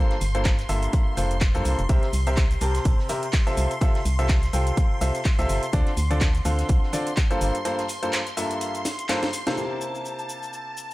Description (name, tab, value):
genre	piano house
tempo	125 BPM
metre	4/4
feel	swing 56% on 16ths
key	G dorian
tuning	A4 = 441 Hz
part	string machine, violins	sustained chords	0.0-10.9 s	A5 to C6	-34 LUFS	equal	ensemble chorus, sidechain pumping
part	bright concert grand piano	riff	0.0-10.9 s	G2 to A5	-28 LUFS	left 1 dB	sidechain pumping, tape echo
part	house drum kit	drums	0.1-10.9 s	cabasa, handclaps, hi-hat, snare drum	-31 LUFS	equal	none
part	loose indie drum kit	drums	0.1-9.5 s	hi-hat, snare drum	-43 LUFS	right 2 dB	none
part	organ-like FM bass	bass	0.2-7.5 s	F1 to G2	-24 LUFS	equal	sidechain pumping
part	electronic kick drum	drums	0.5-7.3 s	none	-21 LUFS	equal	none
room	studio ambience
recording	none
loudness	-21 LUFS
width	side -18 dB against mid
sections	0.0-9.6 A section; 9.6-10.9 B section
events	break 7.7-9.6; drum fill 8.9-9.6; band accent 9.5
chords	0.0 Gm11; 1.9 C7; 3.6 Fmaj7/C; 5.7 Dm7; 7.4 Gm11; 9.6 C7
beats	0.45 0.93 1.41 | 1.89 2.37 2.85 3.33 | 3.81 4.29 4.77 5.25 | 5.73 6.21 6.69 7.17 | 7.65 8.13 8.61 9.09 | 9.57 10.05 10.53